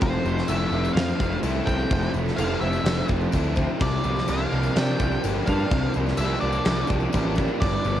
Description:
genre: rock, shoegaze and dream pop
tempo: 126 BPM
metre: 4/4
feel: straight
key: unclear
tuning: A4 = 440 Hz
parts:
  - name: octave-fuzz lead guitar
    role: melody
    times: 0.0-8.0 s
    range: C5 to G5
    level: -31 LUFS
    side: equal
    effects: distortion, cassette tape, analog delay
  - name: direct-recorded clean electric guitar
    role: arpeggios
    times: 0.0-8.0 s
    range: F3 to G4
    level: -35 LUFS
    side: right 8 dB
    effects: none
  - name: overdriven electric guitar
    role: riff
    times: 0.0-8.0 s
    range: G2 to D4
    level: -30 LUFS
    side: right 10 dB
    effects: reverse reverb, cassette tape
  - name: overdriven semi-hollow guitar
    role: riff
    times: 0.0-8.0 s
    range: G2 to G4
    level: -29 LUFS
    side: left 8 dB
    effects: analog chorus, cassette tape
  - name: fuzz picked electric bass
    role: bass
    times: 0.0-8.0 s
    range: F1 to C3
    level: -26 LUFS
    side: equal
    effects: overdrive
  - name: huge arena drum kit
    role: drums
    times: 0.0-7.7 s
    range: crash cymbal, kick drum, snare drum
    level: -27 LUFS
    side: equal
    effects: cassette tape
  - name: tambourine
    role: percussion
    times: 0.0-8.0 s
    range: none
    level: -47 LUFS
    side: left 11 dB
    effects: none
room: light reverb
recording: home recording on cassette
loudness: -21 LUFS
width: side -11 dB against mid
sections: 0.0-8.0 A section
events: none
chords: 0.0 Fmaj7; 3.8 C9sus4

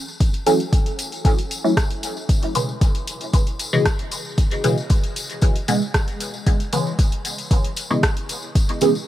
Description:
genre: dub techno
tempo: 115 BPM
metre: 4/4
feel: straight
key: unclear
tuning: A4 = 437 Hz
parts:
  - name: tambourine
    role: percussion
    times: 0.1-9.1 s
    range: none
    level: -32 LUFS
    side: left 3 dB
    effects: none
  - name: deep house drum kit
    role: drums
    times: 0.2-8.9 s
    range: hi-hat, rim click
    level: -28 LUFS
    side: equal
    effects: none
  - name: electronic kick drum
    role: drums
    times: 0.2-8.7 s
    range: none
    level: -18 LUFS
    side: equal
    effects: none
  - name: filtered dub chord stab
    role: stabs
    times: 0.5-8.9 s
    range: B2 to C#4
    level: -22 LUFS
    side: equal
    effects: phaser, sidechain pumping, dub echo
room: light reverb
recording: vinyl crackle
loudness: -18 LUFS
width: side -13 dB against mid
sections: 0.0-9.1 A section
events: none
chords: 0.0 F#m7; 2.3 C#m7

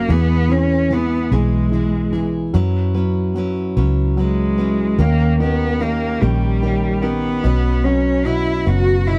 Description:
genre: six-eight pop ballad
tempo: 49 BPM (dotted quarters)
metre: 6/8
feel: straight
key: unclear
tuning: A4 = 439 Hz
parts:
  - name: clear cello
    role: melody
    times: 0.0-9.2 s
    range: G3 to F#4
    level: -22 LUFS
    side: equal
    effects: none
  - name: warm concert grand piano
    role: accompaniment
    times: 0.0-9.2 s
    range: B2 to F#4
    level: -25 LUFS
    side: equal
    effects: none
  - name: picked steel-string acoustic guitar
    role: arpeggios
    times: 0.0-9.2 s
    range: D#3 to B4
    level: -28 LUFS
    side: equal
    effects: none
  - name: vintage muted fingered electric bass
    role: bass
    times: 0.0-9.2 s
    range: F#1 to F#2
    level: -21 LUFS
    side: equal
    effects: none
room: little or no reverb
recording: dry, close 1970s-style studio recording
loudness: -18 LUFS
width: mono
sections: 0.0-9.2 A section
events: none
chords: 0.1 E; 2.5 F#7sus4; 5.0 D#7; 7.4 Bsus2

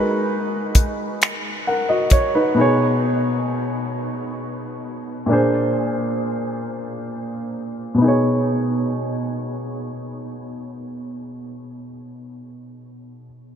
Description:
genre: slow six-eight R&B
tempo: 44 BPM (dotted quarters)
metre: 6/8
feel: straight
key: B major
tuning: A4 = 440 Hz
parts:
  - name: dark baby grand piano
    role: accompaniment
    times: 0.0-13.3 s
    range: A#2 to F#5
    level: -20 LUFS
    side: equal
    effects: low-pass filter
  - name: damped 70s drum kit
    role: drums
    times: 0.7-2.3 s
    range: finger snaps, hi-hat, kick drum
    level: -19 LUFS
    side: equal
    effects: none
room: wet huge ambient reverb, RT60 7.6 s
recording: dreamy mix soaked in reverb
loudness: -18 LUFS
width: side -8 dB against mid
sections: 0.0-8.0 A section; 8.0-10.8 B section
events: filter sweep on grand piano 0.0-8.0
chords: 0.0 G#m9; 2.6 B6; 5.3 A#7; 8.0 B6

